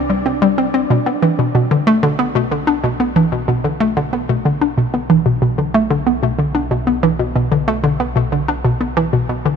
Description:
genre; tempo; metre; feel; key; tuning
ambient, sequencer-driven space music; 93 BPM; 4/4; straight; B phrygian; A4 = 439 Hz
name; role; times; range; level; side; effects
fat analog bass; bass; 0.0-9.6 s; B1 to C2; -29 LUFS; equal; none
bubbling stepped-filter texture; texture; 0.0-0.9 s; D4 to D5; -26 LUFS; right 1 dB; chorus, built-in reverb
hollow square pluck; riff; 0.1-9.5 s; B2 to D4; -14 LUFS; equal; chorus, ping-pong delay
room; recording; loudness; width
moderate huge ambient reverb, RT60 8.3 s; none; -14 LUFS; side -7 dB against mid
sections
0.9-9.6 A section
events
fade-in on analog synth bass 0.9-9.6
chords
0.0 C5; 0.9 Bm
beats
0.26 | 0.90 1.55 2.19 2.84 | 3.48 4.13 4.77 5.42 | 6.06 6.71 7.35 8.00 | 8.64 9.29

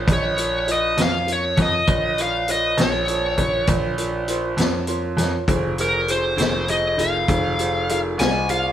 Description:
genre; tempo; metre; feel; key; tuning
slow blues; 67 BPM (dotted quarters); 12/8; straight; unclear; A4 = 440 Hz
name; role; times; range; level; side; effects
bright concert grand piano; bass; 0.0-8.7 s; F1 to F2; -24 LUFS; equal; none
smooth overdriven lead guitar; melody; 0.1-8.7 s; Bb4 to Ab5; -21 LUFS; equal; none
warm concert grand piano; accompaniment; 0.1-8.7 s; F4 to C6; -27 LUFS; right 2 dB; none
vintage drum kit; drums; 0.1-8.6 s; hi-hat, kick drum, snare drum; -24 LUFS; left 1 dB; none
room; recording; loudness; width
moderate stone room reverb, RT60 1.1 s; band playing live in one room; -18 LUFS; side -10 dB against mid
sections
0.0-8.7 A section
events
grand piano fill 4.6-5.5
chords
0.0 Bbm; 5.5 Fm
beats
0.08 0.98 | 1.88 2.78 3.68 4.58 | 5.48 6.38 7.29 8.19

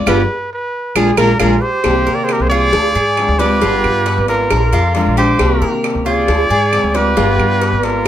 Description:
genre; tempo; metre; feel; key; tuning
latin, Cuban son and guajira; 135 BPM; 4/4; straight; C minor; A4 = 435 Hz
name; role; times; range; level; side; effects
fingerpicked steel-string acoustic guitar; accompaniment; 0.0-8.1 s; C3 to G4; -19 LUFS; left 4 dB; none
Cuban tres; arpeggios; 0.0-8.1 s; F4 to D5; -19 LUFS; right 1 dB; none
upright bass; bass; 0.0-8.1 s; G1 to C3; -18 LUFS; equal; none
warm trumpet; melody; 0.1-8.1 s; Ab4 to D5; -17 LUFS; right 1 dB; none
claves; percussion; 0.1-8.1 s; none; -23 LUFS; right 8 dB; none
cowbell; percussion; 0.1-8.1 s; none; -21 LUFS; left 2 dB; none
breathy tenor recorder; second line; 1.4-8.1 s; F4 to Bb4; -22 LUFS; right 4 dB; none
room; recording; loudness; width
moderate studio reverb, RT60 0.6 s; none; -12 LUFS; side -11 dB against mid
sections
0.0-1.8 A section; 1.8-8.1 B section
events
trumpet solo 0.0-1.8; band accent 0.1-1.8; drum fill 1.2-1.8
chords
0.1 G7; 1.0 Bb7; 1.8 Cm7; 2.7 Dm7b5; 3.6 G7; 4.5 Bb7; 5.4 Cm7; 6.3 Dm7b5; 7.2 G7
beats
| 0.07 0.51 0.95 1.40 | 1.84 2.29 2.73 3.17 | 3.62 4.06 4.51 4.95 | 5.39 5.84 6.28 6.72 | 7.17 7.61 8.06

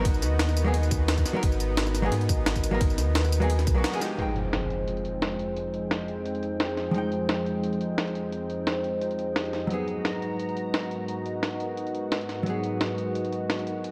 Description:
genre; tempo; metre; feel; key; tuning
liquid drum and bass; 174 BPM; 4/4; swing 54% on 16ths; F minor; A4 = 440 Hz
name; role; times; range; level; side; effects
hollow-body jazz guitar; accompaniment; 0.0-13.9 s; F3 to G5; -35 LUFS; equal; tape echo
lush unison pad; sustained chords; 0.0-13.9 s; F2 to Bb5; -36 LUFS; equal; chorus, sidechain pumping
vibraphone with soft mallets; arpeggios; 0.0-13.9 s; Eb4 to Gb5; -35 LUFS; equal; low-pass filter, tape echo
sub bass with octave; bass; 0.0-3.8 s; Ab1 to Ab2; -28 LUFS; equal; none
breakbeat sampler-style drum kit; drums; 0.1-13.9 s; hi-hat, ride cymbal, snare drum, tambourine; -33 LUFS; equal; low-pass filter on hats, low-pass filter on cymbals, low-pass filter on perc, low-pass filter on snare
electronic kick drum; drums; 0.1-3.7 s; none; -28 LUFS; equal; none
impact; sound effects; 4.2-5.6 s; none; -37 LUFS; equal; none
room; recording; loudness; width
moderate concert hall reverb, RT60 2.1 s; dark, warm production; -27 LUFS; mono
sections
0.0-4.2 A section; 4.2-13.9 B section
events
drop 0.0-4.2; break 3.8-4.2; band accent 3.8; impact 4.2-5.6; filter sweep on analog synth pad 4.2-13.9; filter sweep on vibraphone 4.2-13.9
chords
0.0 Abm9; 4.2 Fm9; 9.7 Abm9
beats
| 0.05 0.39 0.74 1.08 | 1.43 1.77 2.12 2.46 | 2.81 3.15 3.50 3.84 | 4.19 4.53 4.88 5.22 | 5.57 5.91 6.26 6.60 | 6.95 7.29 7.63 7.98 | 8.32 8.67 9.02 9.36 | 9.70 10.05 10.39 10.74 | 11.08 11.43 11.77 12.12 | 12.46 12.81 13.15 13.50 | 13.84

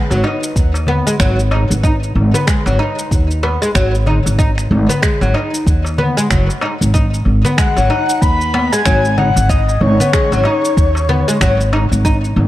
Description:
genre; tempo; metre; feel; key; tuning
organic downtempo; 94 BPM; 4/4; swing 59% on 16ths; G# minor pentatonic; A4 = 440 Hz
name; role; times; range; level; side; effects
oud; arpeggios; 0.0-12.2 s; F#3 to D#4; -18 LUFS; equal; digital delay
quartz singing bowl; texture; 0.0-12.5 s; B4; -39 LUFS; left 1 dB; none
upright bass; bass; 0.1-12.5 s; F#1 to D#2; -15 LUFS; equal; none
electronic shaker and finger snaps; drums; 0.1-12.3 s; none; -22 LUFS; equal; studio reverb
darbuka; percussion; 0.1-12.5 s; none; -23 LUFS; left 2 dB; none
electronic kick drum; drums; 0.6-12.2 s; none; -16 LUFS; equal; studio reverb
breathy flute-like synth lead; melody; 7.6-11.7 s; C#5 to B5; -18 LUFS; left 2 dB; lush chorus, digital delay
room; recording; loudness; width
light reverb, small room ambience; dark, warm production; -12 LUFS; side -14 dB against mid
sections
0.0-12.5 A section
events
none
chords
0.0 G#m7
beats
0.56 1.20 | 1.83 2.47 3.11 3.75 | 4.39 5.03 5.67 6.30 | 6.94 7.58 8.22 8.86 | 9.49 10.13 10.77 11.41 | 12.05

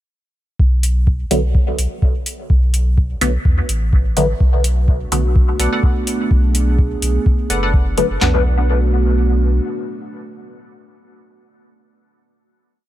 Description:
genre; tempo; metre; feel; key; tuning
dub techno; 126 BPM; 4/4; swing 55% on 16ths; B dorian; A4 = 440 Hz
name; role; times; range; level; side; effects
warm sub bass; bass; 0.6-9.6 s; F#1 to E2; -17 LUFS; equal; sidechain pumping
booming analog drum machine; drums; 0.6-8.3 s; handclaps, kick drum, snare drum, toms; -15 LUFS; equal; none
electronic hi-hat; drums; 0.8-8.1 s; none; -23 LUFS; left 1 dB; none
filtered dub chord stab; stabs; 1.3-11.2 s; D3 to B3; -22 LUFS; left 1 dB; phaser, cassette tape, dub echo
dark analog pad; sustained chords; 4.4-11.2 s; A3 to G#4; -23 LUFS; right 2 dB; chorus, sidechain pumping
wavetable chord stab; riff; 5.6-11.2 s; A4 to F#5; -26 LUFS; left 1 dB; sidechain pumping, dub echo
room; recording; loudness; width
digital ambience; none; -14 LUFS; side -14 dB against mid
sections
0.6-8.2 groove; 8.2-12.0 final chord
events
none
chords
0.6 Bm7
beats
| 0.59 1.07 1.55 2.02 | 2.50 2.98 3.45 3.93 | 4.41 4.88 5.36 5.83 | 6.31 6.79 7.26 7.74 | 8.21 8.69 9.17 9.64 | 10.12 10.60 11.07

